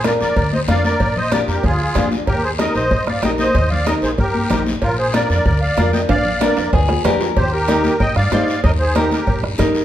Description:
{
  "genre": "latin, cumbia",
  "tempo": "189 BPM",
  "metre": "4/4",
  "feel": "straight",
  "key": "Eb major",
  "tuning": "A4 = 440 Hz",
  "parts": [
    { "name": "musette accordion", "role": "melody", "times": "0.0-9.4 s", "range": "F4 to G5", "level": "-20 LUFS", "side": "equal", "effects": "none" },
    { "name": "nylon-string guitar", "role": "accompaniment", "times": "0.0-9.8 s", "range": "D4 to C5", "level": "-22 LUFS", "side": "left 1 dB", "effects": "none" },
    { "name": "upright bass", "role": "bass", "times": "0.0-9.7 s", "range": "Bb1 to G2", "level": "-21 LUFS", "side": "equal", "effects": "none" },
    { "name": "bombo", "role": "percussion", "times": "0.0-9.8 s", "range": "none", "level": "-22 LUFS", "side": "equal", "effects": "none" },
    { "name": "congas", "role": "percussion", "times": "0.0-9.7 s", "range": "none", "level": "-24 LUFS", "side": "left 3 dB", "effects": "none" },
    { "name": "cowbell and timbales", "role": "percussion", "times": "0.0-9.7 s", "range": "none", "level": "-26 LUFS", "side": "right 4 dB", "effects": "none" },
    { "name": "guiro", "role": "percussion", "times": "0.0-9.8 s", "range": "none", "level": "-31 LUFS", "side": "left 3 dB", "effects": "none" },
    { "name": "electric guitar at the edge of break-up", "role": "second line", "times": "6.7-7.3 s", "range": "Ab4 to Bb4", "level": "-24 LUFS", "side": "left 5 dB", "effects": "none" }
  ],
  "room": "wet large studio reverb, RT60 1.2 s",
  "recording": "minimal, uncompressed stereo recording",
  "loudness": "-14 LUFS",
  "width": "side -12 dB against mid",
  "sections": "0.0-7.4 A section; 7.4-9.8 B section",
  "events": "drum fill 6.1-7.4",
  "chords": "0.0 Bb; 2.3 Eb; 4.8 Bb; 7.4 Eb"
}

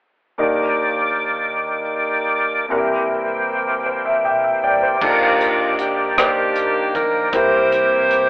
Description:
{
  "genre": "slow gospel",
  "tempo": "52 BPM (dotted quarters)",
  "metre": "6/8",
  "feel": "straight",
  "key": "Eb major",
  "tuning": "A4 = 440 Hz",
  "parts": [
    { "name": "clear grand piano", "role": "accompaniment", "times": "0.4-8.3 s", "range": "C2 to G5", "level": "-20 LUFS", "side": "equal", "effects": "none" },
    { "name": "overdriven tonewheel organ", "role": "sustained chords", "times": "0.4-8.3 s", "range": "Eb3 to D5", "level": "-20 LUFS", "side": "equal", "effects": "slow rotary speaker, chorus vibrato" },
    { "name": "warm saxophone section", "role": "melody", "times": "5.0-8.3 s", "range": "Bb3 to C5", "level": "-18 LUFS", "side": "equal", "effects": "none" },
    { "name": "fingered electric bass", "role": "bass", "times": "5.0-8.3 s", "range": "Bb1 to Eb2", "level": "-40 LUFS", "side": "equal", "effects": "none" },
    { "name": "crisp fusion drum kit", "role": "drums", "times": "5.0-8.3 s", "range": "crash cymbal, hi-hat, kick drum, rim click", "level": "-20 LUFS", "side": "equal", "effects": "none" }
  ],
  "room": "moderate studio reverb, RT60 0.5 s",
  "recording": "band playing live in one room, telephone sound",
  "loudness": "-16 LUFS",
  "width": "side -23 dB against mid",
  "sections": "0.4-5.0 A section; 5.0-8.3 B section",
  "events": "grand piano fill 3.9-5.0",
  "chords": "0.4 Ebmaj7; 2.7 C7; 5.0 Ebmaj7; 7.3 C7"
}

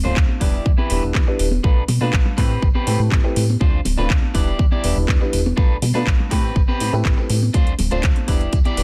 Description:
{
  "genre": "filtered disco house",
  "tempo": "122 BPM",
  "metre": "4/4",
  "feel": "straight",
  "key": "A minor",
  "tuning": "A4 = 440 Hz",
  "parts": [
    { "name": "dark concert grand piano", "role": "accompaniment", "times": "0.0-8.8 s", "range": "G3 to C5", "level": "-28 LUFS", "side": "equal", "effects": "phaser, sidechain pumping, low-pass filter" },
    { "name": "electric guitar at the edge of break-up", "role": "riff", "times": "0.0-8.8 s", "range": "C4 to D5", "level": "-29 LUFS", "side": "equal", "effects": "vintage 12-bit sampler grit, sidechain pumping, low-pass filter" },
    { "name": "plucky analog bass", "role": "bass", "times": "0.0-8.8 s", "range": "D1 to B2", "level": "-23 LUFS", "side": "equal", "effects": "tube saturation, sidechain pumping, low-pass filter" },
    { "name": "tambourine and congas", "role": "percussion", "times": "0.1-8.8 s", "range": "none", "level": "-32 LUFS", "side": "equal", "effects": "sidechain pumping on perc, low-pass filter on perc" },
    { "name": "electronic kick drum", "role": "drums", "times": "0.2-8.6 s", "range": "none", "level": "-19 LUFS", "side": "equal", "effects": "none" },
    { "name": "house drum kit", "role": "drums", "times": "0.2-8.8 s", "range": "handclaps, hi-hat", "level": "-30 LUFS", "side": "equal", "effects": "sidechain pumping on hats" }
  ],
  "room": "digital ambience",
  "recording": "none",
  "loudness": "-18 LUFS",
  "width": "mono",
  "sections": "0.0-8.8 A section",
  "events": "none",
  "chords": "0.4 Em7; 1.6 Bm7b5; 2.4 Am9; 3.6 Dm7; 4.3 Em7; 5.6 Bm7b5; 6.3 Am9; 7.5 Dm7; 8.3 Em7"
}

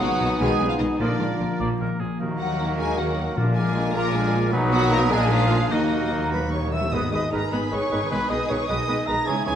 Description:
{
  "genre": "classical",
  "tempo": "102 BPM (dotted quarters)",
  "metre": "6/8",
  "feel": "straight",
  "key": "Eb minor",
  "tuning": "A4 = 440 Hz",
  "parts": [
    { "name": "warm studio violin section", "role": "melody", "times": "0.0-9.6 s", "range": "D5 to A#6", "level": "-31 LUFS", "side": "left 4 dB", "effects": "none" },
    { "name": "mellow clarinet", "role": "second line", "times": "0.0-9.5 s", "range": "D4 to G#4", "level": "-31 LUFS", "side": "equal", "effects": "none" },
    { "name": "mellow large flute ensemble", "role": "second line", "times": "0.0-9.6 s", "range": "A#4 to Eb6", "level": "-32 LUFS", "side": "right 1 dB", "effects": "none" },
    { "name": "warm oboe", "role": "second line", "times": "0.0-9.5 s", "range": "Gb4 to D5", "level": "-33 LUFS", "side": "right 2 dB", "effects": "none" },
    { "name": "warm studio violin section", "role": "second line", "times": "0.0-9.6 s", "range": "D4 to B4", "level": "-31 LUFS", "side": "left 2 dB", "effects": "none" },
    { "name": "rich symphonic viola section", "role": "accompaniment", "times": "0.0-9.6 s", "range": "Db3 to F#4", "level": "-32 LUFS", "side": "right 1 dB", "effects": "none" },
    { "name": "warm bassoon", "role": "accompaniment", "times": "0.0-9.5 s", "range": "D#3 to Cb4", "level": "-32 LUFS", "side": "right 3 dB", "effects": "none" },
    { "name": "mellow French horn section", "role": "sustained chords", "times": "0.0-9.1 s", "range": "D3 to D#4", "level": "-30 LUFS", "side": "left 2 dB", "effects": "none" },
    { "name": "concert harp", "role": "arpeggios", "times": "0.0-9.6 s", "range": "G#2 to B5", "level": "-30 LUFS", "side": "left 4 dB", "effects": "none" },
    { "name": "warm symphonic cello section", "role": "bass", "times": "0.0-9.5 s", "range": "Eb2 to Eb3", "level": "-29 LUFS", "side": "right 2 dB", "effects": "none" },
    { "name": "warm symphonic double bass section", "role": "bass", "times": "0.0-9.5 s", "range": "G#1 to Eb2", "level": "-30 LUFS", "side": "right 2 dB", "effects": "none" },
    { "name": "timpani", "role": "percussion", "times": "1.0-6.9 s", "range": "Bb2 to Eb3", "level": "-30 LUFS", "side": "left 1 dB", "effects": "none" },
    { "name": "mellow trumpet", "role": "stabs", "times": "6.3-9.6 s", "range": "A#4 to A#5", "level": "-28 LUFS", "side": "right 3 dB", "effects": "none" }
  ],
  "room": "wet recital hall reverb, RT60 1.4 s",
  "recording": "vinyl crackle",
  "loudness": "-20 LUFS",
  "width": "side -9 dB against mid",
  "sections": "0.0-6.9 A section; 6.9-9.6 B section",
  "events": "timpani fill 5.7-6.9",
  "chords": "0.0 Abm/Cb; 1.0 Bb; 2.2 Ebm; 3.4 Bb7; 4.5 B; 5.1 Bb7; 5.7 Ebm; 6.9 G#m; 8.1 G#m/B"
}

